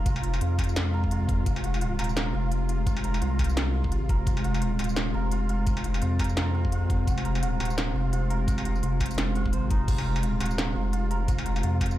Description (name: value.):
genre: half-time drum and bass.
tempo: 171 BPM.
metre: 4/4.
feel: swing 58% on 16ths, half-time.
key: F minor.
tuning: A4 = 436 Hz.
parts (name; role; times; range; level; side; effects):
bowed-like drone; sustained chords; 0.0-12.0 s; C3 to F4; -31 LUFS; equal; built-in reverb, sidechain pumping.
santur; arpeggios; 0.0-12.0 s; Eb4 to F5; -35 LUFS; right 2 dB; ping-pong delay.
saturated sub bass; bass; 0.0-12.0 s; Eb1 to F2; -27 LUFS; equal; none.
electronic kick drum; drums; 0.1-11.9 s; none; -27 LUFS; equal; none.
industrial drum kit; drums; 0.1-12.0 s; crash cymbal, hi-hat, snare drum, struck metal, tambourine; -33 LUFS; equal; none.
room: little or no reverb.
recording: played on a big sound system in a bare room, large studio reverb.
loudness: -24 LUFS.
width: side -14 dB against mid.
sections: 0.0-12.0 A section.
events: none.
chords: 0.0 Fm.